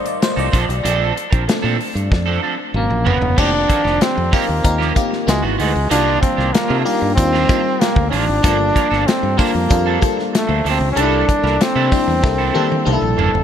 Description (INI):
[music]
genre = polished 1980s jazz-funk pop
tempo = 95 BPM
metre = 4/4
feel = straight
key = unclear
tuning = A4 = 441 Hz
[part]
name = FM electric piano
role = accompaniment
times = 0.0-13.4 s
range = Cb3 to F5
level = -22 LUFS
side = left 3 dB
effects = phaser, analog chorus
[part]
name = electric guitar at the edge of break-up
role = riff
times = 0.0-13.4 s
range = Eb3 to Bb4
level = -23 LUFS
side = right 7 dB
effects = analog chorus
[part]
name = modern studio drum kit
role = drums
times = 0.1-13.4 s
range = crash cymbal, hi-hat, kick drum, snare drum, toms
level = -19 LUFS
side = equal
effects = none
[part]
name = fingered electric bass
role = bass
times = 0.4-13.4 s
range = F1 to C3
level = -20 LUFS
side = equal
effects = none
[part]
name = warm flugelhorn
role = melody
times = 2.8-13.4 s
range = G#3 to A4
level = -18 LUFS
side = equal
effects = none
[sound]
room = moderate lush hall reverb, RT60 2.9 s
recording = bright 1980s-style digital production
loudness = -14 LUFS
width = side -9 dB against mid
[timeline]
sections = 0.0-3.4 A section; 3.4-13.4 B section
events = FM electric piano solo 0.0-3.4; drum fill 2.1-3.4, 12.2-13.4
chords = 0.0 F7; 0.5 Bbmaj9; 2.7 Abm11; 3.4 F9sus4; 5.3 C#m11; 5.9 Cm11; 8.4 Gm9; 11.0 C13